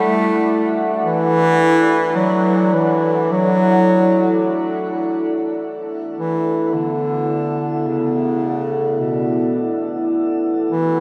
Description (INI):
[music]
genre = ambient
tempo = free time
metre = none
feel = none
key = B minor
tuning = A4 = 440 Hz
[part]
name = clear bass clarinet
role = melody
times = 0.0-11.0 s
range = B2 to A3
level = -21 LUFS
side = equal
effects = shimmer reverb, diffuse ambient delay
[part]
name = deep dark ambient pad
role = sustained chords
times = 0.0-11.0 s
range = B3 to F#5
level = -21 LUFS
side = equal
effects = chorus, built-in reverb, shimmer reverb
[sound]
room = wet lush hall reverb, RT60 2.6 s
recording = dreamy mix soaked in reverb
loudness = -18 LUFS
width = mono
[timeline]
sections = 0.0-5.6 A section; 5.6-11.0 B section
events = none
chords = 0.0 Bm (rootless); 5.6 Bm